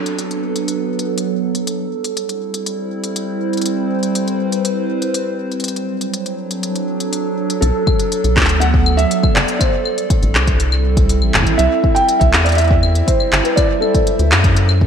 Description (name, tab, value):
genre	IDM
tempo	121 BPM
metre	4/4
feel	straight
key	B phrygian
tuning	A4 = 440 Hz
part	warbly tape-like pad	sustained chords	0.0-14.9 s	F#3 to E5	-20 LUFS	right 2 dB	chorus, built-in reverb, phaser
part	organic electronic drum kit	drums	0.1-14.8 s	claves, handclaps, hi-hat	-19 LUFS	left 1 dB	studio reverb, gated reverb
part	felt-muted upright piano	melody	7.6-14.8 s	A4 to G5	-19 LUFS	equal	analog chorus, digital delay
part	rubbery square bass	bass	7.6-14.9 s	E1 to F#2	-15 LUFS	equal	none
part	electronic kick drum	drums	7.9-14.9 s	none	-16 LUFS	equal	studio reverb
room	moderate plate reverb, RT60 2.9 s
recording	bright 1980s-style digital production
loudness	-14 LUFS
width	side -7 dB against mid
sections	0.0-7.6 A section; 7.6-14.9 B section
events	none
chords	0.0 Bm7; 1.7 Am7; 3.7 Cmaj7; 5.6 D7; 7.6 Bm7; 9.6 Am7; 11.6 C; 13.6 D7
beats	0.18 0.68 1.18 | 1.67 2.17 2.66 3.16 | 3.66 4.15 4.65 5.14 | 5.64 6.13 6.63 7.13 | 7.62 8.12 8.61 9.11 | 9.61 10.10 10.60 11.09 | 11.59 12.09 12.58 13.08 | 13.57 14.07 14.56